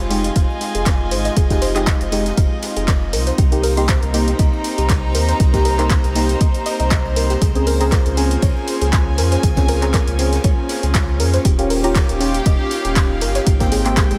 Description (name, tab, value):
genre	deep house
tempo	119 BPM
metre	4/4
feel	swing 55% on 16ths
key	Bb dorian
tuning	A4 = 440 Hz
part	airy breathy pad	sustained chords	0.0-14.2 s	Ab3 to C5	-29 LUFS	equal	chorus, sidechain pumping
part	warm sub bass	bass	0.0-14.2 s	Eb1 to F2	-23 LUFS	equal	tube saturation, sidechain pumping
part	jazz brush drum kit	drums	0.0-14.2 s	hi-hat, ride cymbal, snare drum	-38 LUFS	equal	none
part	warm chamber string section	texture	0.0-14.2 s	Ab3 to Bb5	-28 LUFS	equal	sidechain pumping
part	deep mellow chord stab	stabs	0.1-14.1 s	Ab3 to Ab4	-26 LUFS	equal	chorus, vintage 12-bit sampler grit, sidechain pumping, tape echo
part	punchy analog drum machine	drums	0.1-14.2 s	handclaps, hi-hat	-27 LUFS	equal	none
part	soft round pluck	arpeggios	0.4-14.0 s	G4 to Eb6	-29 LUFS	equal	chorus, sidechain pumping, diffuse ambient delay
part	electronic kick drum	drums	0.4-14.1 s	none	-19 LUFS	equal	none
room	light reverb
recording	none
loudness	-17 LUFS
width	mono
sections	0.0-14.2 A section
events	filter sweep on synth stab 0.0-14.2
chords	0.0 Fm7; 3.1 Cm7; 7.4 Bbm9/Db; 11.4 Eb9; 13.5 Abmaj7